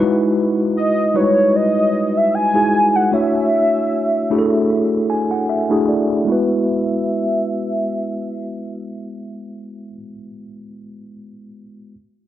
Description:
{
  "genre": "contemporary R&B",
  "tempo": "76 BPM",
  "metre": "4/4",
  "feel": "swing 54% on 16ths",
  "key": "E major",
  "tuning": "A4 = 441 Hz",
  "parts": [
    { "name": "mellow tine electric piano", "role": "accompaniment", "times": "0.0-12.0 s", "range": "G3 to G#5", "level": "-18 LUFS", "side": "equal", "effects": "medium stereo tremolo, low-pass filter" },
    { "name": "warm velvety synth lead", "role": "melody", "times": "0.8-9.9 s", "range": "C#5 to G#5", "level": "-18 LUFS", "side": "equal", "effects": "chorus, low-pass filter, analog delay" }
  ],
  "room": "moderate lush hall reverb, RT60 2.6 s",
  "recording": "dry, gritty hardware recording",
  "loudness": "-15 LUFS",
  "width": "side -12 dB against mid",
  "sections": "0.0-6.3 A section; 6.3-9.4 B section",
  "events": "filter sweep 0.0-6.3; tine electric piano fill 4.7-6.3",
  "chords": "0.0 Emaj9; 3.1 Dmaj9; 6.3 Eadd9"
}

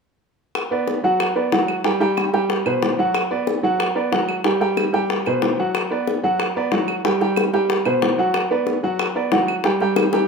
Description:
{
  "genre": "latin, salsa",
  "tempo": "185 BPM",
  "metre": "4/4",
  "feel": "straight",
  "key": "unclear",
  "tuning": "A4 = 439 Hz",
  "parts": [
    { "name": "bongos", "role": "percussion", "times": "0.6-10.2 s", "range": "none", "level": "-23 LUFS", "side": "left 5 dB", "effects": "none" },
    { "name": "claves", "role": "percussion", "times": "0.6-10.1 s", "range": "none", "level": "-29 LUFS", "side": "right 4 dB", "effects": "none" },
    { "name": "bright upright piano", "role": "accompaniment", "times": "0.7-10.3 s", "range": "B2 to G5", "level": "-19 LUFS", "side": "right 2 dB", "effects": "none" }
  ],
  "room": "moderate studio reverb, RT60 0.9 s",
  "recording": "minimal, uncompressed stereo recording",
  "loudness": "-18 LUFS",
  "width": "side -5 dB against mid",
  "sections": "0.5-10.3 A section",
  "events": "drum fill 10.0-10.3",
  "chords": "0.5 Bm; 1.8 C5; 3.1 Bm/F#; 4.4 C5; 5.7 Bm/F#; 7.0 C5; 8.3 Bm/F#; 9.6 N.C."
}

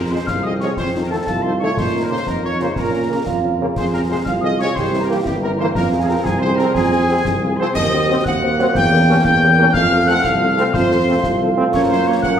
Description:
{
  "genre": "military-style march for wind band",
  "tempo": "120 BPM (dotted quarters)",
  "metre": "6/8",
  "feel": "straight",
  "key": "F minor",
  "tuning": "A4 = 439 Hz",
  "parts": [
    { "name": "warm trumpet section", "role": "melody", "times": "0.0-12.4 s", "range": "G4 to G5", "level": "-22 LUFS", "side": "equal", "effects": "none" },
    { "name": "mellow tuba", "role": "bass", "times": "0.0-12.4 s", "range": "G1 to Bb2", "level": "-20 LUFS", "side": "right 1 dB", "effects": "none" },
    { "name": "mellow wooden piccolo", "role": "second line", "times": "0.1-12.4 s", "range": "G5 to G6", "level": "-22 LUFS", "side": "left 4 dB", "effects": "none" },
    { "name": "mellow French horn section", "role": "accompaniment", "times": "0.1-12.4 s", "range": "Bb3 to C5", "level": "-25 LUFS", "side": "left 4 dB", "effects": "none" },
    { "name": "clear trombone section", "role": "sustained chords", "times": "0.1-12.1 s", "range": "C3 to C#4", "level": "-25 LUFS", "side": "right 2 dB", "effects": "none" },
    { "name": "clear euphonium", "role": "second line", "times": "0.3-12.4 s", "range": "A3 to Ab4", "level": "-22 LUFS", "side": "right 4 dB", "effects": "none" },
    { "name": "concert snare drum, concert bass drum and clash cymbals", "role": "drums", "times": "0.3-12.4 s", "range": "none", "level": "-26 LUFS", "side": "left 1 dB", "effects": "none" }
  ],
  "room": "wet recital hall reverb, RT60 1.6 s",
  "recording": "recorded in a church or concert hall",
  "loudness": "-14 LUFS",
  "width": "side -8 dB against mid",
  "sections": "0.0-12.4 A section",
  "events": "none",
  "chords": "0.0 Fm; 0.8 F7; 1.8 Bbm; 3.8 Fm; 4.8 C7; 5.8 Fm; 7.8 Cdim/Eb; 8.7 Edim7; 9.7 F; 11.7 Gb"
}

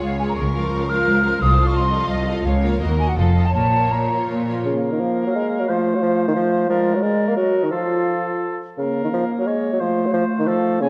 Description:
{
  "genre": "classical, dramatic, fast romantic movement for symphony orchestra",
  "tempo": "160-180 BPM",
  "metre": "3/4",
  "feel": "rubato",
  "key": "Bb minor",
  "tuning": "A4 = 442 Hz",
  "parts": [
    { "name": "rich studio violin section", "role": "melody", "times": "0.0-4.5 s", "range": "A4 to Eb5", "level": "-34 LUFS", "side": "equal", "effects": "none" },
    { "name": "rich studio violin section", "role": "second line", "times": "0.0-4.6 s", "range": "Ab4 to F5", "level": "-33 LUFS", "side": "equal", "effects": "none" },
    { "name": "silver concert flute", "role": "second line", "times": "0.0-10.9 s", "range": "D5 to F6", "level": "-28 LUFS", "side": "equal", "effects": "none" },
    { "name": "rich symphonic viola section", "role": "accompaniment", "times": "0.0-4.7 s", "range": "F3 to Gb4", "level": "-29 LUFS", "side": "equal", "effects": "none" },
    { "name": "rich symphonic cello section", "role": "bass", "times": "0.0-4.6 s", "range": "C2 to Bb2", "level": "-24 LUFS", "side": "equal", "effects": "none" },
    { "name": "rich symphonic double bass section", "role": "bass", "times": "0.4-3.9 s", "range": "F1 to Eb2", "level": "-24 LUFS", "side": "equal", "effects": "none" },
    { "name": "clear clarinet", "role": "second line", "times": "4.6-10.9 s", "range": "Ab3 to Gb4", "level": "-26 LUFS", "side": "equal", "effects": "none" },
    { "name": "mellow oboe", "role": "second line", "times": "4.7-10.9 s", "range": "A4 to Db5", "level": "-31 LUFS", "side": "equal", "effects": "none" },
    { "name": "mellow bassoon", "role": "accompaniment", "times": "4.7-10.9 s", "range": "Db3 to Bb3", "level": "-22 LUFS", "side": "equal", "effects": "none" }
  ],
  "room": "moderate scoring stage reverb, RT60 1.6 s",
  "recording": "dark, warm production",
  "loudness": "-20 LUFS",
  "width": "mono",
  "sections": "0.0-4.7 A section; 4.7-10.9 B section",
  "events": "none",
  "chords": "0.4 Bbm/Db; 1.4 F7/C; 2.5 Bbm/Db; 2.8 Ebm; 3.2 F7; 3.5 Bbm; 4.7 Bb5/Db; 5.7 F; 6.7 Bb7/F; 7.4 Ebm/Gb; 7.7 F; 8.8 Bbm/Db; 9.8 F"
}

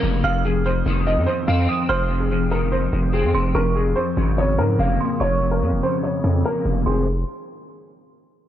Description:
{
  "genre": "hip hop",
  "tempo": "145 BPM",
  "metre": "4/4",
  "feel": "half-time",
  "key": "F minor",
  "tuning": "A4 = 440 Hz",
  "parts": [
    { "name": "electric guitar at the edge of break-up", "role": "accompaniment", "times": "0.0-7.1 s", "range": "F2 to C4", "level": "-24 LUFS", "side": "left 1 dB", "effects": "ensemble chorus" },
    { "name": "distorted 808-style bass", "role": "bass", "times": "0.0-7.2 s", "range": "F1 to Ab2", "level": "-21 LUFS", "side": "equal", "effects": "distortion" },
    { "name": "dark baby grand piano", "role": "melody", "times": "0.2-7.1 s", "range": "Ab4 to F5", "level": "-24 LUFS", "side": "equal", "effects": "digital delay" },
    { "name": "dark detuned synth bell", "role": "second line", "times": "0.2-7.1 s", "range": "C6 to F6", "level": "-30 LUFS", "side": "right 4 dB", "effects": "chorus, tremolo, digital delay" }
  ],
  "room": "light reverb",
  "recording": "low-pass filter",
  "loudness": "-18 LUFS",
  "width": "side -11 dB against mid",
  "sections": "0.0-6.9 A section; 6.9-8.5 B section",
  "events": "filter sweep 0.0-6.9",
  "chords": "0.2 F5; 3.5 Bbm7/F; 6.9 Fm7"
}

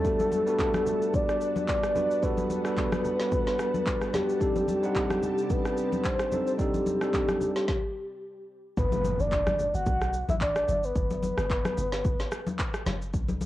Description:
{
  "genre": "amapiano",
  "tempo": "110 BPM",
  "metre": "4/4",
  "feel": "swing 55% on 16ths",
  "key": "G major",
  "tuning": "A4 = 440 Hz",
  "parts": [
    { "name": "soft octave-layered synth lead", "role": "melody", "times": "0.0-12.8 s", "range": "G4 to F#5", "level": "-28 LUFS", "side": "left 1 dB", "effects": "chorus, tremolo, cassette tape, tape echo" },
    { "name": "bell-like tine electric piano", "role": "accompaniment", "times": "0.0-7.7 s", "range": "G3 to F#5", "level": "-31 LUFS", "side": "right 3 dB", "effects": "cassette tape" },
    { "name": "string machine, cellos", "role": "sustained chords", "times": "0.0-7.6 s", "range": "G3 to A5", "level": "-40 LUFS", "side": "equal", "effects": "ensemble chorus, sidechain pumping, cassette tape" },
    { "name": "afro-pop drum kit", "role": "drums", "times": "0.0-13.5 s", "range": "handclaps, kick drum, rim click, shaker, snare drum", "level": "-31 LUFS", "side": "equal", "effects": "cassette tape" },
    { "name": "congas", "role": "percussion", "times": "0.2-13.5 s", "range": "none", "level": "-35 LUFS", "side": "left 2 dB", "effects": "none" },
    { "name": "deep log drum bass", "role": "bass", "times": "8.8-13.5 s", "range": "F#1 to C2", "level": "-32 LUFS", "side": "equal", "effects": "none" },
    { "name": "impact", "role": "sound effects", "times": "8.8-11.0 s", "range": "none", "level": "-35 LUFS", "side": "equal", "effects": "none" }
  ],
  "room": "light reverb, digital ambience",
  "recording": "home recording on cassette",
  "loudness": "-25 LUFS",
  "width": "side -15 dB against mid",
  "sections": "0.0-8.8 A section; 8.8-13.5 B section",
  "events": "stop 7.7-8.8; drop 8.8-13.5; impact 8.8-11.0",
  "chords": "0.0 Gmaj9; 4.4 Cm6; 8.8 Gmaj7"
}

